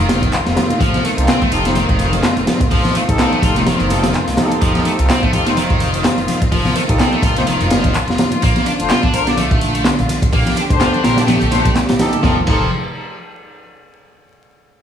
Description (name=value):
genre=breakbeat, breaks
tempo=126 BPM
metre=4/4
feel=swing 56% on 16ths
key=F mixolydian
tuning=A4 = 440 Hz
part: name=rich studio string section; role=sustained chords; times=0.0-12.5 s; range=D3 to G4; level=-22 LUFS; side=equal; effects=vintage 12-bit sampler grit, sidechain pumping
part: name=high-gain distorted guitar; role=riff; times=0.0-12.7 s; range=Eb3 to Bb4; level=-20 LUFS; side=equal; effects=distortion, tube saturation, vintage 12-bit sampler grit, digital delay
part: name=upright bass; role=bass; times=0.0-12.7 s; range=F1 to C2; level=-20 LUFS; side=equal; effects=none
part: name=crunchy breakbeat drum kit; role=drums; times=0.1-12.6 s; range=crash cymbal, hi-hat, kick drum, snare drum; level=-17 LUFS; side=equal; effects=none
part: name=house drum kit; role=drums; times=0.1-12.2 s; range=handclaps, hi-hat, ride cymbal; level=-26 LUFS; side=left 1 dB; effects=none
part: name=congas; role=percussion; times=0.1-12.2 s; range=none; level=-26 LUFS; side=left 2 dB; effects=none
part: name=mellow brass ensemble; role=stabs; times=1.2-12.7 s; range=D4 to D5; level=-22 LUFS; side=left 2 dB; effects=vintage 12-bit sampler grit, digital delay
room=light reverb, small room ambience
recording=vinyl crackle, studio reverb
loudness=-13 LUFS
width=side -9 dB against mid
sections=0.0-12.2 A section; 12.2-14.1 B section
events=drop 0.0-12.2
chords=0.0 F7; 8.4 Bbmaj7; 12.2 F7